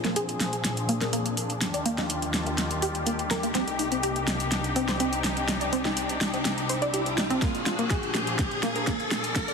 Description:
progressive house; 124 BPM; 4/4; straight; A4 = 439 Hz
rich symphonic string section; sustained chords; 0.0-9.5 s; C2 to Ab4; -30 LUFS; left 2 dB; sidechain pumping, low-pass filter
wide unison pluck; arpeggios; 0.0-9.5 s; Bb3 to D5; -30 LUFS; equal; sidechain pumping, tape echo
deep house drum kit; drums; 0.0-9.5 s; hi-hat, snare drum; -29 LUFS; equal; small room ambience
riser; sound effects; 1.4-9.5 s; -35 LUFS; equal
electronic kick drum; drums; 7.4-9.5 s; -30 LUFS; equal; small room ambience
moderate lush hall reverb, RT60 2.6 s; dense, heavily limited modern master, high-pass filter; -24 LUFS; side -5 dB against mid
0.0-9.5 A section
build-up 0.0-9.5; drum fill 0.0-9.5; filter sweep on synth pluck 0.0-9.5; filter sweep on string section 0.0-9.5; riser 1.4-9.5
0.0 Bb7; 1.6 Ebmaj7; 3.5 Cmadd9; 7.4 Bb7

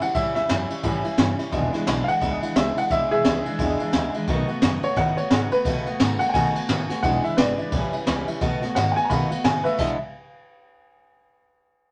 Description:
rockabilly; 174 BPM; 4/4; swing 61% on 8ths; E mixolydian; A4 = 442 Hz
clear upright piano; melody; 0.0-10.0 s; G#4 to B5; -27 LUFS; equal
picked steel-string acoustic guitar; accompaniment; 0.0-10.0 s; E2 to F#4; -29 LUFS; equal
upright bass; bass; 0.0-10.0 s; E1 to B2; -32 LUFS; equal
jazz brush drum kit; drums; 0.0-9.9 s; crash cymbal, kick drum, ride cymbal, snare drum; -27 LUFS; equal
moderate studio reverb, RT60 0.5 s; -23 LUFS; mono
0.0-9.8 A section; 9.8-11.2 B section
0.0 A7; 1.5 E7; 4.3 B7; 7.0 E7; 7.7 A7; 8.4 B7; 9.8 E9

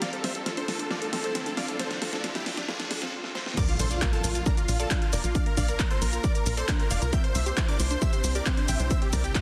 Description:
uplifting trance; 135 BPM; 4/4; straight; A4 = 440 Hz
dense compressed supersaw; melody; 0.0-9.4 s; D4 to G5; -36 LUFS; equal; sidechain pumping, delay
shimmering ambient pad; sustained chords; 0.0-9.4 s; C3 to G4; -43 LUFS; equal
unison pluck; arpeggios; 0.0-9.4 s; C4 to D6; -39 LUFS; equal; sidechain pumping, delay
tight sequencer bass; bass; 0.0-9.3 s; F1 to D2; -31 LUFS; equal; sidechain pumping, high-pass filter
big-room dance drum kit; drums; 0.0-9.4 s; crash cymbal, handclaps, hi-hat, shaker, snare drum; -35 LUFS; equal
riser and impact; sound effects; 0.0-5.4 s; -39 LUFS; equal
unison pluck; second line; 3.6-9.4 s; F5 to G6; -41 LUFS; equal; phaser, cassette tape, sidechain pumping
electronic kick drum; drums; 3.6-9.4 s; -29 LUFS; equal; overdrive
moderate lush hall reverb, RT60 1.8 s, digital ambience; dense, heavily limited modern master, high-pass filter; -27 LUFS; mono
0.0-3.6 A section; 3.6-9.4 B section
build-up 0.0-3.6; drum fill 0.0-3.1, 3.2-3.6; filter sweep on synth pluck 0.0-3.6; drop 3.6-9.4; impact 3.6-5.4
0.0 Dm7; 3.6 Bb; 7.1 Cadd9

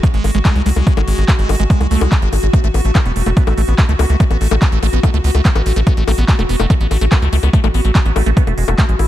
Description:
psychedelic trance; 144 BPM; 4/4; straight; A4 = 440 Hz
evolving wavetable pad; sustained chords; 0.0-9.1 s; F#4; -25 LUFS; left 2 dB; chorus, built-in reverb, sidechain pumping
liquid acid bass; riff; 0.0-9.1 s; G#3 to E4; -22 LUFS; moving between left 6 dB and right 6 dB; phaser, auto-pan, sidechain pumping, dub echo
big-room dance drum kit; drums; 0.0-9.1 s; bongos, handclaps, hi-hat; -22 LUFS; left 4 dB; overdrive
electronic kick drum; drums; 0.0-8.9 s; -13 LUFS; equal; overdrive
tight sequencer bass; bass; 0.1-9.1 s; E1 to C#2; -14 LUFS; equal
digital ambience; dark, warm production; -12 LUFS; side -13 dB against mid
0.0-9.1 A section
0.0 F#sus2; 2.5 A5

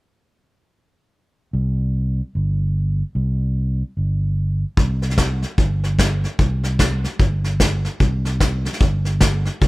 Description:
honky-tonk and classic country; 148 BPM; 4/4; swing 61% on 8ths; A4 = 438 Hz
fingered electric bass; bass; 1.5-9.7 s; G1 to C2; -20 LUFS; equal
soft brush drum kit; drums; 4.8-9.7 s; hi-hat, kick drum, snare drum; -18 LUFS; equal
little or no reverb; -18 LUFS; side -20 dB against mid
1.5-8.0 A section; 8.0-9.7 B section

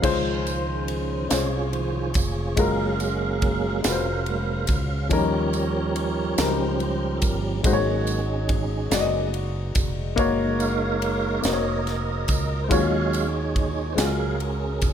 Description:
slow gospel; 47 BPM (dotted quarters); 6/8; straight; Db major; A4 = 440 Hz
warm upright piano; accompaniment; 0.0-14.9 s; Ab2 to Eb5; -26 LUFS; left 5 dB
mellow tonewheel organ; sustained chords; 0.0-14.9 s; Eb3 to F5; -27 LUFS; right 4 dB; fast rotary speaker, chorus vibrato
mellow fretless electric bass; bass; 0.0-14.9 s; F1 to Eb2; -28 LUFS; right 1 dB; wide subtle chorus
crisp fusion drum kit; drums; 0.0-14.9 s; crash cymbal, kick drum, ride cymbal, snare drum; -28 LUFS; right 1 dB
tambourine; percussion; 0.0-14.9 s; -34 LUFS; right 7 dB
light reverb; -21 LUFS; side -9 dB against mid
0.0-14.9 A section
tonewheel organ solo 0.0-14.9
0.0 Dbmaj7; 2.6 Gbmaj9; 5.1 Eb7; 7.6 Ab7sus4; 10.2 Gb6; 12.7 Ebm11

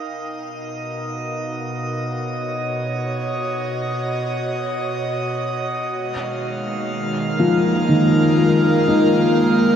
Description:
ambient; 61 BPM; 3/4; straight; A4 = 441 Hz
airy breathy pad; sustained chords; 0.0-9.8 s; B2 to F5; -23 LUFS; equal; chorus, shimmer reverb
drifting glass-harmonics texture; texture; 0.0-9.8 s; Eb5 to F6; -27 LUFS; right 1 dB; chorus, built-in reverb, shimmer reverb
organ-like drone; drone; 6.8-9.8 s; Eb3 to Bb3; -22 LUFS; equal; ensemble chorus, built-in reverb
felt-muted upright piano; arpeggios; 7.4-9.8 s; Eb3 to Eb4; -17 LUFS; left 2 dB; diffuse ambient delay, shimmer reverb
wet huge ambient reverb, RT60 7.9 s; cassette tape; -18 LUFS; side -8 dB against mid
0.0-9.8 A section
fade-in on analog synth pad 0.0-9.8; fade-in on synth texture 0.0-9.8
0.0 Bmaj7; 5.9 Abm7

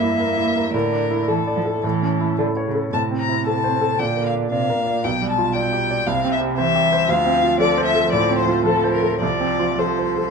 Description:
quick classical-period movement for piano quartet; 104-119 BPM; 4/4; rubato; A4 = 440 Hz
warm violin; melody; 0.0-10.3 s; A4 to Bb5; -21 LUFS; left 7 dB
rich cello; second line; 0.0-10.3 s; Bb2 to Bb3; -24 LUFS; right 8 dB
clear baby grand piano; accompaniment; 0.0-10.3 s; B1 to D5; -21 LUFS; right 2 dB
light reverb; dark, warm production, nothing above 10.3 kHz; -17 LUFS; side -5 dB against mid
0.0-10.3 A section
0.0 Edim/G; 0.7 Asus4; 1.8 A; 2.9 Am; 4.0 Bb; 5.0 G7/B; 6.1 C; 7.1 Dm7; 9.2 F/C

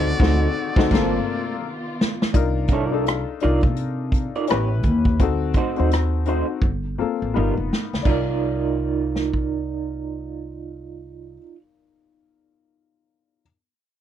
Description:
R&B, neo-soul; 84 BPM; 4/4; swing 59% on 16ths; C dorian; A4 = 437 Hz
trumpet with metal mute; melody; 0.0-1.6 s; D5; -32 LUFS; right 1 dB; tape echo
electric guitar through a small old amp; second line; 0.0-11.6 s; G3 to D5; -25 LUFS; right 8 dB; tremolo
warm upright piano; accompaniment; 0.0-13.4 s; Bb3 to D5; -25 LUFS; left 10 dB
dark studio string section; sustained chords; 0.0-2.3 s; C3 to F#4; -33 LUFS; left 1 dB
upright bass; bass; 0.0-11.4 s; F1 to C3; -24 LUFS; equal
unplugged drum kit; drums; 0.2-9.5 s; crash cymbal, hi-hat, kick drum, rim click, snare drum; -22 LUFS; equal
little or no reverb; -19 LUFS; side -10 dB against mid
0.0-2.3 A section; 2.3-8.1 B section; 8.1-10.9 C section
band accent 0.0-2.3; drum fill 1.6-2.3, 6.6-8.1
0.0 D7b9; 0.9 Gm11; 1.6 Ebsus2; 2.3 Cm11; 4.5 A9; 5.2 D7b9; 6.6 Gm11; 7.3 G7alt; 8.1 Cm11

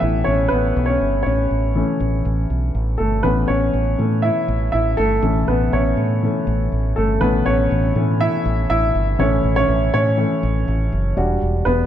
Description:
piano-driven pop; 121 BPM; 4/4; straight; A4 = 440 Hz
warm baby grand piano; accompaniment; 0.0-11.9 s; E3 to E5; -18 LUFS; left 1 dB
fingered electric bass; bass; 0.0-11.9 s; E1 to A2; -20 LUFS; equal
moderate concert hall reverb, RT60 2.2 s; dark, warm production; -16 LUFS; side -10 dB against mid
0.0-3.2 A section; 3.2-11.2 B section
grand piano solo 0.0-3.2, 3.2-11.2
0.0 A; 11.2 Em7

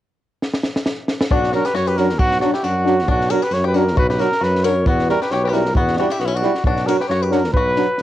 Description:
balkan folk, Balkan brass band; 135 BPM; 2/4; swing 55% on 16ths; B harmonic minor; A4 = 439 Hz
compact cocktail drum kit; percussion; 0.4-8.0 s; kick drum, snare drum; -22 LUFS; equal; cassette tape
mellow trumpet; melody; 1.3-8.0 s; E4 to C#5; -20 LUFS; equal
bluegrass banjo; second line; 1.3-8.0 s; B3 to A#4; -26 LUFS; left 8 dB; cassette tape
warm tuba; bass; 1.3-8.0 s; F#1 to F#2; -21 LUFS; equal
clear euphonium; accompaniment; 1.5-7.9 s; F#3 to G3; -23 LUFS; right 7 dB; cassette tape
warm French horn; accompaniment; 1.5-7.8 s; D4 to E4; -24 LUFS; left 7 dB; cassette tape
light reverb, studio reverb; home recording on cassette; -16 LUFS; side -13 dB against mid
1.3-8.0 A section
drum fill 0.4-1.3
0.4 N.C.; 1.3 Bm; 4.9 Em; 6.6 Bm

